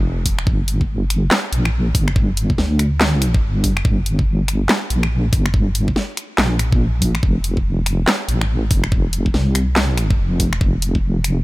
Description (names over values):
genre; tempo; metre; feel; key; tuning
deep dubstep; 142 BPM; 4/4; swing 61% on 16ths, half-time; G minor; A4 = 440 Hz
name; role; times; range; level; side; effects
deep soft wobble bass; bass; 0.0-11.4 s; F1 to D2; -18 LUFS; equal; chorus, tube saturation
dubstep drum kit; drums; 0.3-11.3 s; finger snaps, handclaps, hi-hat, snare drum; -21 LUFS; equal; none
electronic kick drum; drums; 0.3-11.0 s; none; -18 LUFS; equal; none
room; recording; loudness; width
little or no reverb; none; -15 LUFS; side -20 dB against mid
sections
0.0-11.4 A section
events
none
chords
none